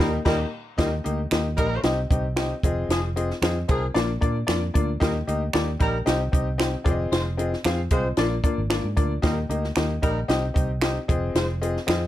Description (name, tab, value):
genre	uptempo 1960s-style soul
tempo	114 BPM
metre	4/4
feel	straight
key	Eb major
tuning	A4 = 437 Hz
part	mellow horn section	second line	0.0-11.5 s	F3 to C5	-29 LUFS	right 1 dB	none
part	clear upright piano	accompaniment	0.0-12.0 s	Bb3 to F5	-27 LUFS	left 3 dB	none
part	vintage muted fingered electric bass	bass	0.0-12.1 s	F1 to Bb2	-27 LUFS	right 1 dB	none
part	compact cocktail drum kit	drums	0.0-12.0 s	crash cymbal, hi-hat, kick drum, snare drum	-25 LUFS	equal	none
part	finger snaps	percussion	1.3-12.0 s	none	-32 LUFS	right 6 dB	none
room	light reverb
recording	none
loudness	-21 LUFS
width	side -13 dB against mid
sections	0.8-12.1 A section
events	band accent 0.0-0.8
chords	0.0 Eb; 1.8 Cm; 2.6 Fm7; 4.0 Bb; 5.0 Eb; 6.1 Cm; 6.9 Fm7; 8.2 Bb; 9.2 Eb; 10.3 Cm; 11.1 Fm7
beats	0.26 | 0.79 1.31 1.84 2.37 | 2.90 3.42 3.95 4.48 | 5.01 5.54 6.07 6.60 | 7.12 7.65 8.18 8.71 | 9.24 9.77 10.30 10.83 | 11.36 11.88